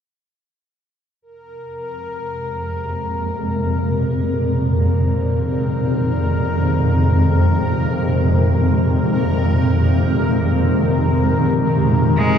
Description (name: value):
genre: dark ambient drone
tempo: free time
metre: none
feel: none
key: unclear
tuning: A4 = 440 Hz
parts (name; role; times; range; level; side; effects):
- granular cloud pad; sustained chords; 2.6-12.4 s; F2 to C4; -19 LUFS; equal; built-in reverb
- swarming drone; drone; 2.4-12.4 s; F2 to C3; -19 LUFS; equal; built-in reverb
- bubbling stepped-filter texture; texture; 1.3-12.4 s; Bb4; -25 LUFS; left 2 dB; chorus, built-in reverb, shimmer reverb
- clear cello; melody; 12.2-12.4 s; Ab3; -16 LUFS; right 1 dB; none
room: wet cathedral reverb, RT60 5.8 s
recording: worn, warbling old tape, cassette tape, warbly pitch drift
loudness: -15 LUFS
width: side -8 dB against mid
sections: 1.2-12.4 A section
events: none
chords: 1.2 Ab69/F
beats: free time